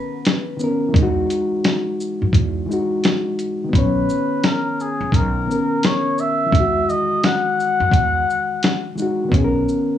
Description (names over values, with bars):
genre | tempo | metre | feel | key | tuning
lo-fi hip hop | 86 BPM | 4/4 | swing 60% on 16ths | unclear | A4 = 439 Hz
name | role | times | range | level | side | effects
mellow electric guitar | second line | 0.0-0.8 s | B4 | -34 LUFS | right 2 dB | low-pass filter, tape echo
bright reed electric piano | accompaniment | 0.0-10.0 s | D#3 to C#5 | -21 LUFS | left 2 dB | cassette tape, low-pass filter
lo-fi sampler-style drum kit | drums | 0.3-9.9 s | hi-hat, kick drum, shaker, snare drum | -18 LUFS | equal | none
upright bass | bass | 0.9-9.6 s | B1 to F#2 | -22 LUFS | right 1 dB | none
trumpet with cup mute | melody | 3.8-9.0 s | G#4 to F#5 | -20 LUFS | left 2 dB | low-pass filter
room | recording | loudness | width
moderate studio reverb, RT60 0.6 s | cassette tape, small room ambience | -16 LUFS | side -10 dB against mid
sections
0.0-10.0 A section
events
break 0.0-3.7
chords
0.0 Bmaj9; 0.9 Emaj9; 3.7 Bmaj9; 6.5 Emaj9; 9.3 Bmaj9